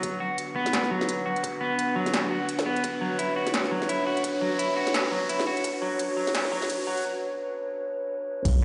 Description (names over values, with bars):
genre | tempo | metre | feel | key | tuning
half-time drum and bass | 171 BPM | 4/4 | swing 58% on 16ths, half-time | B minor | A4 = 440 Hz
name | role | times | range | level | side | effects
dark analog pad | sustained chords | 0.0-8.6 s | B3 to F#5 | -32 LUFS | equal | subtle chorus, sidechain pumping
clean electric guitar | arpeggios | 0.0-8.6 s | F#3 to F#4 | -31 LUFS | equal | low-pass filter, dub echo
electronic kick drum | drums | 0.0-5.7, 8.5 s | none | -32 LUFS | equal | high-pass filter on kick, small room ambience
industrial drum kit | drums | 0.0-8.5 s | crash cymbal, hi-hat, snare drum | -32 LUFS | equal | small room ambience
riser and impact | sound effects | 0.2-8.6 s | none | -41 LUFS | equal | none
saturated sub bass | bass | 8.5-8.6 s | B1 | -24 LUFS | equal | none
room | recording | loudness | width
wet echo chamber reverb, RT60 1.7 s, digital ambience | played on a big sound system in a bare room, large studio reverb, high-pass filter, nothing above 10.9 kHz | -27 LUFS | mono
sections
0.0-8.5 A section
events
build-up 0.0-8.5; riser 0.2-7.0; break 7.0-8.5; impact 8.5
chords
0.0 Bm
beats
| 0.03 0.38 0.73 1.08 | 1.43 1.78 2.13 2.49 | 2.84 3.19 3.54 3.89 | 4.24 4.59 4.94 5.29 | 5.64 6.00 6.35 6.70 | 7.05 7.40 7.75 8.10 | 8.45